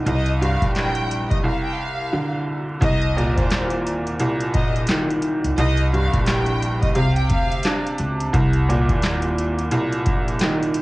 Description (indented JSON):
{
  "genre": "hip hop, boom-bap hip-hop",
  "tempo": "87 BPM",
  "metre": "4/4",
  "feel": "swing 61% on 16ths",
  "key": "C minor",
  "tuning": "A4 = 440 Hz",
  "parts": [
    { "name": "clear upright piano", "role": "accompaniment", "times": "0.0-10.8 s", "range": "C2 to D4", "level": "-22 LUFS", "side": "right 1 dB", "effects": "cassette tape" },
    { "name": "upright bass", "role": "bass", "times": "0.0-10.4 s", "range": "Bb1 to Eb2", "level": "-22 LUFS", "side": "equal", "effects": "none" },
    { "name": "warm studio violin section", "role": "melody", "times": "0.1-7.8 s", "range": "C5 to G5", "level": "-27 LUFS", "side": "equal", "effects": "cassette tape, analog delay" },
    { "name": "booming analog drum machine", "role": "drums", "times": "0.1-10.8 s", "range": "handclaps, hi-hat, kick drum, snare drum", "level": "-23 LUFS", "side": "equal", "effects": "cassette tape" }
  ],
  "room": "studio ambience",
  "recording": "home recording on cassette, vinyl crackle, nothing above 10.5 kHz",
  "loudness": "-18 LUFS",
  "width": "side -20 dB against mid",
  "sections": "0.0-2.8 A section; 2.8-10.8 B section",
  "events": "break 1.4-2.8",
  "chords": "0.1 Eb69; 1.4 Csus24; 2.8 Cm7; 5.6 Eb69; 7.0 Csus24; 8.3 Cm7"
}